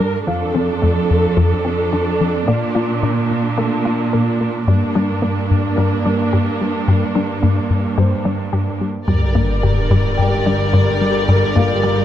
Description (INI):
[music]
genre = cinematic, hybrid orchestral and electronic film score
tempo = 109 BPM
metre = 4/4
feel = straight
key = G minor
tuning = A4 = 441 Hz
[part]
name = warm symphonic viola section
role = accompaniment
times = 0.0-12.0 s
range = G3 to Bb4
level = -21 LUFS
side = right 2 dB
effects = none
[part]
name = plucky analog bass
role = riff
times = 0.0-12.0 s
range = F2 to Bb3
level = -18 LUFS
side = left 2 dB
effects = none
[part]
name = rich studio cello section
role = bass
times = 0.0-12.0 s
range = F2 to Bb2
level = -22 LUFS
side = right 3 dB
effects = none
[part]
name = warm baby grand piano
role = texture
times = 0.0-12.0 s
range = A3 to G5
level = -29 LUFS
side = left 2 dB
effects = tape echo
[part]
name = resonant blip pluck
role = arpeggios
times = 0.3-12.0 s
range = F3 to Bb4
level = -26 LUFS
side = left 2 dB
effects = chorus, tape echo
[part]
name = warm symphonic violin section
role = second line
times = 9.1-12.0 s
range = Bb4 to D5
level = -21 LUFS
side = left 2 dB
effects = none
[part]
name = mellow French horn section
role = sustained chords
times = 9.1-12.0 s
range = D3 to Bb4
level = -23 LUFS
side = left 6 dB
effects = none
[part]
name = clear symphonic double bass section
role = bass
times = 9.1-12.0 s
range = G1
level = -25 LUFS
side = right 5 dB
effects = none
[part]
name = sub drop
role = sound effects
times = 9.1-11.3 s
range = none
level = -21 LUFS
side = equal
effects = none
[sound]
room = light reverb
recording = close, detailed microphones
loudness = -14 LUFS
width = side -11 dB against mid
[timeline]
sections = 0.0-9.1 A section; 9.1-12.0 B section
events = impact 9.1-11.3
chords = 0.3 F6; 2.5 Bb; 4.7 Gm